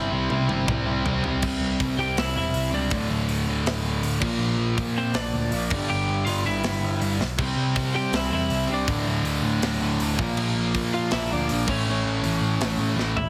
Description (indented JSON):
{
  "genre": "punk rock",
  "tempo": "161 BPM",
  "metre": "4/4",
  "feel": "straight",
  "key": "unclear",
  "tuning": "A4 = 439 Hz",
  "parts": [
    { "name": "lightly driven lead guitar", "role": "melody", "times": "0.0-13.3 s", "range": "C4 to G5", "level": "-31 LUFS", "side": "equal", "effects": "none" },
    { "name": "distorted electric guitar", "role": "riff", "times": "0.0-13.2 s", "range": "D2 to C4", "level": "-33 LUFS", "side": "equal", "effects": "distortion" },
    { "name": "sludgy distorted guitar", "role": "riff", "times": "0.0-13.2 s", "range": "D2 to C4", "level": "-30 LUFS", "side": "equal", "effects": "overdrive" },
    { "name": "tight distorted guitar", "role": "riff", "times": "0.0-1.4, 7.4-13.2 s", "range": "D2 to C4", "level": "-33 LUFS", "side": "equal", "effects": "distortion" },
    { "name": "overdriven picked electric bass", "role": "bass", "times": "0.0-13.3 s", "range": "D1 to C3", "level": "-31 LUFS", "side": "equal", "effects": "none" },
    { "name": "tight metal drum kit", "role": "drums", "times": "0.3-13.3 s", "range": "crash cymbal, hi-hat, kick drum, snare drum, toms", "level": "-32 LUFS", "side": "equal", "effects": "none" }
  ],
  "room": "light reverb",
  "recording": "heavily compressed radio sound",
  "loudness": "-24 LUFS",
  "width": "mono",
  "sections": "0.0-1.4 A section; 1.4-13.3 B section",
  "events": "drum fill 0.0-1.4, 7.2, 13.0-13.3; half time 1.4-13.3",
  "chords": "0.0 C; 2.9 D5; 4.2 Bb; 5.7 G5; 7.4 C; 8.9 D5; 10.2 Bb; 11.7 A"
}